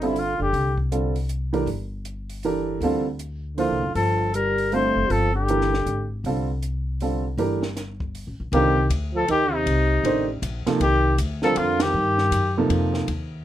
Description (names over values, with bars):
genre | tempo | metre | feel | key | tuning
modal jazz | 158 BPM | 3/4 | swing 64% on 8ths | G dorian, C dorian from 8.5 s | A4 = 440 Hz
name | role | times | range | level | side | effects
warm trumpet | melody | 0.0-0.8, 3.6-6.1, 8.5-12.6 s | Eb4 to C5 | -23 LUFS | left 3 dB | none
mellow trombone | second line | 0.0-0.7, 3.6-6.1, 8.5-12.6 s | C3 to A3 | -27 LUFS | right 4 dB | none
warm upright piano | accompaniment | 0.0-13.1 s | C3 to C5 | -24 LUFS | right 3 dB | none
upright bass | bass | 0.0-13.4 s | F#1 to G2 | -26 LUFS | left 1 dB | none
compact cocktail drum kit | drums | 0.0-13.2 s | hi-hat, kick drum, ride cymbal, snare drum | -34 LUFS | equal | none
room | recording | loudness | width
light reverb | none | -20 LUFS | side -12 dB against mid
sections
0.0-8.5 A section; 8.5-13.4 B section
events
band accent 11.8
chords
0.0 G9sus4; 8.5 Cm9